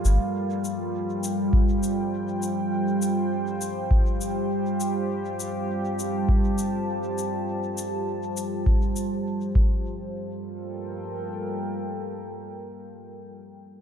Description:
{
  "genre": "ambient dub",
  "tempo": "101 BPM",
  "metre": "4/4",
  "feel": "straight",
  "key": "G minor",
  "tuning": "A4 = 442 Hz",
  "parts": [
    { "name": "deep dark ambient pad", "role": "sustained chords", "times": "0.0-13.0 s", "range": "G3 to A5", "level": "-27 LUFS", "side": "right 1 dB", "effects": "chorus, built-in reverb" },
    { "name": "shaker", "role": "drums", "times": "0.1-9.1 s", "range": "none", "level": "-37 LUFS", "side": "left 6 dB", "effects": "overdrive" },
    { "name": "electronic kick drum", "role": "drums", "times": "1.5-9.7 s", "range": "none", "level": "-21 LUFS", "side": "equal", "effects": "none" }
  ],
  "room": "moderate echo chamber reverb, RT60 2.3 s",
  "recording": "none",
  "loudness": "-24 LUFS",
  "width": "side -8 dB against mid",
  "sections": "0.0-9.8 A section; 9.8-12.2 B section",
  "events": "none",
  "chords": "0.0 Gm9; 9.6 Fsus2/G; 9.8 Gm9"
}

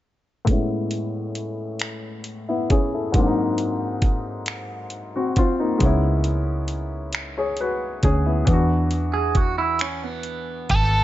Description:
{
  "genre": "slow six-eight R&B",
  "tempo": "45 BPM (dotted quarters)",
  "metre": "6/8",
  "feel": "straight",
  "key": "A major",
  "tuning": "A4 = 440 Hz",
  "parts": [
    { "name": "warm baby grand piano", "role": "accompaniment", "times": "0.4-11.0 s", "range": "G#2 to C#5", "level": "-24 LUFS", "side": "left 2 dB", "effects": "low-pass filter" },
    { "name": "smooth R&B drum kit", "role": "drums", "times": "0.5-10.9 s", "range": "finger snaps, hi-hat, kick drum", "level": "-22 LUFS", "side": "equal", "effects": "none" },
    { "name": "vintage muted fingered electric bass", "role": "bass", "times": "5.8-11.0 s", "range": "G#1 to E2", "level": "-23 LUFS", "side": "equal", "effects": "none" },
    { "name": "clean electric guitar", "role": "second line", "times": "9.1-11.0 s", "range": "B3 to G#4", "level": "-25 LUFS", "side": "right 7 dB", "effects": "none" },
    { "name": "biting lead guitar", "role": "melody", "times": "10.7-11.0 s", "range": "A4", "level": "-20 LUFS", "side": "right 1 dB", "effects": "overdrive" }
  ],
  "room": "digital ambience",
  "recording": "nothing above 7.8 kHz",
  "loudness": "-20 LUFS",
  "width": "side -14 dB against mid",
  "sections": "0.5-11.0 A section",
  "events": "filter sweep on grand piano 0.5-11.0",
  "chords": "0.5 Amaj9; 3.1 G#7; 5.8 C#m7; 8.5 E7"
}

